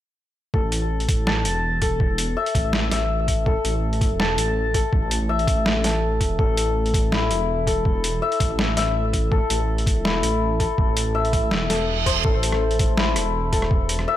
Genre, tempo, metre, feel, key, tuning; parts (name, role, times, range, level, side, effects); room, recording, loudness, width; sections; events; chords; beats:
half-time drum and bass; 164 BPM; 4/4; swing 53% on 16ths, half-time; A minor; A4 = 440 Hz
santur; arpeggios; 0.5-14.2 s; E4 to A5; -24 LUFS; left 3 dB; ping-pong delay
dark detuned saw bass; bass; 0.5-14.1 s; E1 to A1; -24 LUFS; equal
electronic kick drum; drums; 0.5-13.8 s; -21 LUFS; equal; overdrive
boom bap sampler-style drum kit; drums; 0.7-14.1 s; hi-hat, rim click, snare drum; -26 LUFS; right 1 dB; overdrive
reverse cymbal; sound effects; 11.7-12.2 s; -26 LUFS; right 9 dB
light reverb; -19 LUFS; side -12 dB against mid
0.5-14.2 A section
reverse cymbal 11.7-12.2
0.5 Am
| 0.54 0.90 1.27 1.64 | 2.00 2.37 2.73 3.10 | 3.46 3.83 4.20 4.56 | 4.93 5.29 5.66 6.03 | 6.39 6.76 7.12 7.49 | 7.86 8.22 8.59 8.95 | 9.32 9.69 10.05 10.42 | 10.78 11.15 11.51 11.88 | 12.25 12.61 12.98 13.34 | 13.71 14.07